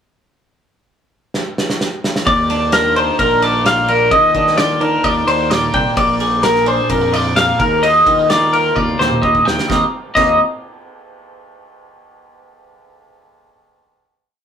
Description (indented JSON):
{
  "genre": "math rock and midwest emo",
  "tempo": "129 BPM",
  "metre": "4/4",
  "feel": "straight",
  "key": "Eb major",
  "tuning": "A4 = 442 Hz",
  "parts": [
    { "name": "loose indie drum kit", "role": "drums", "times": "1.3-10.3 s", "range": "crash cymbal, kick drum, ride cymbal, snare drum, toms", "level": "-22 LUFS", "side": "right 1 dB", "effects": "none" },
    { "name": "twelve-string electric guitar", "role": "accompaniment", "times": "2.3-10.4 s", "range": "Eb2 to Ab4", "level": "-20 LUFS", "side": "right 2 dB", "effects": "spring reverb" },
    { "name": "twelve-string electric guitar", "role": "arpeggios", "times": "2.3-10.4 s", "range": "Bb4 to G5", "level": "-13 LUFS", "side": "left 1 dB", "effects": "none" },
    { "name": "growling fingered electric bass", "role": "bass", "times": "2.3-10.4 s", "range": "Bb1 to Eb3", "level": "-22 LUFS", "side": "right 1 dB", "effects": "overdrive" }
  ],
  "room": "moderate studio ambience, RT60 0.5 s",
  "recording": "rough rehearsal-room recording",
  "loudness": "-12 LUFS",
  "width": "side -8 dB against mid",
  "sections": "0.4-2.3 pickup bar; 2.3-9.7 A section; 9.7-11.6 final chord",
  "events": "drum fill 1.3-2.3, 8.8-9.7",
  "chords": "0.4 N.C.; 2.3 Ebmaj7sus2; 6.0 Bb9; 7.6 Ebadd9; 9.7 Eb69",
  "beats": "| 0.41 0.87 1.33 1.80 | 2.26 2.72 3.19 3.65 | 4.11 4.57 5.04 5.50 | 5.96 6.43 6.89 7.36 | 7.82 8.29 8.76 9.23 | 9.70 10.16"
}